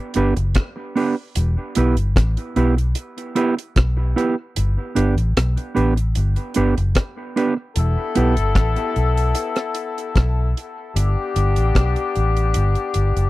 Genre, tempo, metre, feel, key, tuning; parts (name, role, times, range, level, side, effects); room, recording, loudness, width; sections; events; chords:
dub reggae; 75 BPM; 4/4; straight; E minor; A4 = 439 Hz
deep reggae drum kit; drums; 0.1-13.3 s; hi-hat, kick drum, rim click; -20 LUFS; equal
mellow electric guitar; accompaniment; 0.2-8.3 s; B3 to B4; -22 LUFS; right 3 dB; dub echo
vintage muted fingered electric bass; bass; 0.2-13.3 s; E1 to B1; -18 LUFS; equal
mellow horn section; second line; 7.8-13.3 s; B3 to A4; -23 LUFS; left 5 dB; dub echo
little or no reverb; dry, close 1970s-style studio recording; -17 LUFS; side -17 dB against mid
0.0-13.3 A section
break 0.0-7.8; kick muted 4.6-6.2
0.0 G; 1.4 Em; 4.6 G; 7.8 E5; 11.0 G